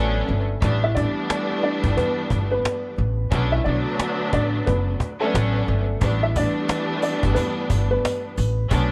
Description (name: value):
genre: hip hop, boom-bap hip-hop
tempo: 89 BPM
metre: 4/4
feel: swing 62% on 16ths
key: unclear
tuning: A4 = 439 Hz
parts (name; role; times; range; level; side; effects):
- dark upright piano; melody; 0.0-8.7 s; A3 to E5; -28 LUFS; equal; high-pass filter, low-pass filter
- rich studio string section; accompaniment; 0.0-8.9 s; D3 to D4; -28 LUFS; equal; high-pass filter, low-pass filter
- upright bass; bass; 0.0-8.9 s; F#1 to B1; -25 LUFS; equal; none
- cajon; drums; 0.3-8.9 s; none; -27 LUFS; equal; none
- sleigh bells; percussion; 6.0-8.9 s; none; -44 LUFS; equal; none
room: small room reverb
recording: none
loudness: -22 LUFS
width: mono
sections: 0.0-8.9 A section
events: none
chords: 0.0 Bm9; 0.6 A9sus4; 3.3 Bm9; 6.0 A9sus4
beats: | 0.62 1.29 1.97 2.64 | 3.32 3.99 4.67 5.34 | 6.01 6.69 7.36 8.04 | 8.71